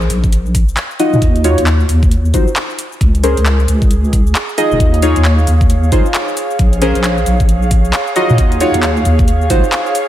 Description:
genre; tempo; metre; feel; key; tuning
UK garage, two-step garage; 134 BPM; 4/4; swing 61% on 16ths; Bb minor; A4 = 441 Hz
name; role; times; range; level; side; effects
deep soft wobble bass; bass; 0.0-9.6 s; Eb1 to Bb2; -13 LUFS; equal; chorus
garage drum kit; drums; 0.0-10.1 s; finger snaps, handclaps, hi-hat, shaker; -20 LUFS; equal; none
electronic kick drum; drums; 0.2-9.6 s; none; -13 LUFS; equal; none
deep mellow chord stab; stabs; 1.0-9.6 s; Db4 to Eb5; -16 LUFS; equal; chorus, analog delay
airy breathy pad; texture; 3.4-10.1 s; Ab4 to F5; -21 LUFS; right 1 dB; chorus, sidechain pumping
room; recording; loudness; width
light reverb; none; -10 LUFS; side -12 dB against mid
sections
0.0-10.1 A section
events
none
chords
0.0 Bb5; 1.2 Ebm9; 3.0 Bbm9/Db; 4.6 Eb9sus4; 6.6 Bbm9

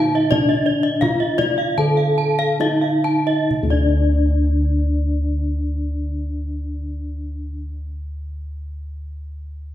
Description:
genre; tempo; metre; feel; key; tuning
Balinese gamelan; 63-92 BPM; 4/4; straight; unclear; A4 = 440 Hz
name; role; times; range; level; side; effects
gamelan-type bronze metallophone; melody; 0.0-7.6 s; D4 to A4-30c; -21 LUFS; left 1 dB; none
gamelan-type bronze metallophone; arpeggios; 0.0-7.6 s; D5 to A5-30c; -25 LUFS; left 5 dB; none
gamelan-type bossed gongs; bass; 0.0-7.5 s; D2 to Eb4+20c; -22 LUFS; equal; none
gamelan-type bronze metallophone; arpeggios; 0.2-7.6 s; D5 to A5-30c; -26 LUFS; right 4 dB; none
kendang; percussion; 0.2-3.9 s; none; -27 LUFS; right 2 dB; none
room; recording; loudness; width
wet recital hall reverb, RT60 1.8 s; heard from further back in the room; -17 LUFS; side -12 dB against mid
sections
0.0-3.5 A section; 3.5-9.7 B section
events
slowing down 0.0-3.5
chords
none

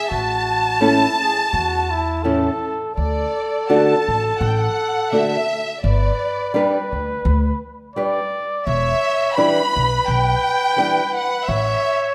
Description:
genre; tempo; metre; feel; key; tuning
mexican folk, mariachi; 85 BPM; 4/4; swing 55% on 8ths; D major; A4 = 441 Hz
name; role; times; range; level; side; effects
dark studio violin section; melody; 0.0-12.1 s; D5 to B5; -23 LUFS; equal; none
dark trumpet; second line; 0.0-12.1 s; E4 to D5; -25 LUFS; equal; none
upright bass; bass; 0.1-11.7 s; E1 to E2; -24 LUFS; equal; none
nylon-string guitar; accompaniment; 0.8-11.0 s; A2 to B4; -22 LUFS; equal; none
room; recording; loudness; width
wet recital hall reverb, RT60 1.6 s; none; -19 LUFS; mono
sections
0.0-3.0 A section; 3.0-12.1 B section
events
none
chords
0.1 A; 3.0 D; 5.8 G; 8.7 Em7; 11.5 A

